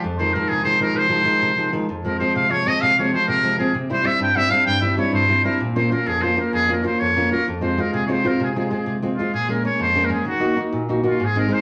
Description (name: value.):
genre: italian folk.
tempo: 129 BPM (dotted quarters).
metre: 6/8.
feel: straight.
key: F minor.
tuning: A4 = 444 Hz.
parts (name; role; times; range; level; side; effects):
trumpet with metal mute; melody; 0.0-11.6 s; F4 to G5; -22 LUFS; equal; none.
nylon-string guitar; accompaniment; 0.0-11.6 s; F2 to Gb4; -23 LUFS; equal; none.
room: wet large studio reverb, RT60 0.9 s.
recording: none.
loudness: -20 LUFS.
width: mono.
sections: 0.0-9.3 A section; 9.3-11.6 B section.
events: none.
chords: 0.0 Fm7; 1.9 Fm; 3.7 C; 5.6 Bbm; 7.5 Fm; 9.3 Bbm7; 10.3 Ebm.